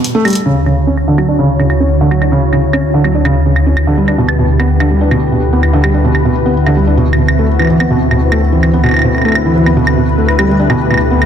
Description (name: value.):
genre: IDM.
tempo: 145 BPM.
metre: 4/4.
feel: straight.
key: D major.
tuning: A4 = 440 Hz.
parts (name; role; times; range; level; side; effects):
electronic hi-hat and claves; drums; 0.0-11.3 s; none; -19 LUFS; right 3 dB; low-pass filter on snare, low-pass filter on hats, low-pass filter on perc.
felt-muted upright piano; arpeggios; 0.1-11.2 s; B2 to D4; -12 LUFS; right 1 dB; low-pass filter, digital delay.
warm analog pad; sustained chords; 0.5-11.3 s; D2 to C#5; -12 LUFS; left 1 dB; chorus.
room: moderate echo chamber reverb, RT60 2.1 s.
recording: dense, heavily limited modern master.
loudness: -9 LUFS.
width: side -8 dB against mid.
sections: 0.5-11.3 A section.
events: filter sweep on analog synth pad 0.5-11.3; filter sweep on felt piano 0.5-11.3.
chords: 0.5 Dmaj9; 3.8 G6/D; 7.1 D13; 10.4 G69/D.